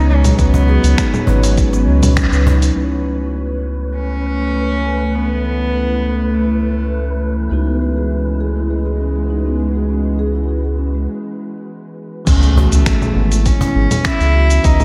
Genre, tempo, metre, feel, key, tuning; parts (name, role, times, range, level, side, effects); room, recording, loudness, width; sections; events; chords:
organic downtempo; 101 BPM; 4/4; straight; A4 = 442 Hz
rich cello; melody; 0.0-7.2, 12.3-14.8 s; A3 to E4; -24 LUFS; equal; analog delay
bell-like tine electric piano; accompaniment; 0.0-14.8 s; E3 to B4; -29 LUFS; equal
bowed-like drone; sustained chords; 0.2-11.1 s; E3 to D#5; -26 LUFS; equal; built-in reverb, sidechain pumping
marimba with soft mallets; arpeggios; 0.0-2.7, 7.5-14.8 s; G#3 to B4; -24 LUFS; equal; analog delay
round analog bass; bass; 0.0-14.8 s; G#1 to C#2; -18 LUFS; equal; sidechain pumping
wind-like tuned noise texture; texture; 0.0-11.1 s; B4 to C#5; -34 LUFS; equal; built-in reverb
dusty soul sampler-style drum kit; drums; 0.2-2.7, 12.3-14.8 s; cabasa, congas, crash cymbal, finger snaps, hi-hat; -24 LUFS; equal; low-pass filter on hats, low-pass filter on perc, low-pass filter on snare, low-pass filter on cymbals, low-pass filter on room
electronic kick drum; drums; 0.4-2.3, 12.3-14.8 s; -19 LUFS; equal
cajon; percussion; 0.5-2.6, 12.6-13.7 s; -24 LUFS; equal
impact; sound effects; 12.3-14.6 s; -26 LUFS; equal
moderate lush hall reverb, RT60 1.9 s, digital ambience; dreamy mix soaked in reverb; -16 LUFS; mono
0.0-2.8 A section; 2.8-12.3 B section; 12.3-14.8 A section
band accent 2.2; break 11.1-12.3; impact 12.3-14.6
0.0 Badd9; 2.8 Aadd9/C#; 7.5 Eadd9/C#; 12.3 Aadd9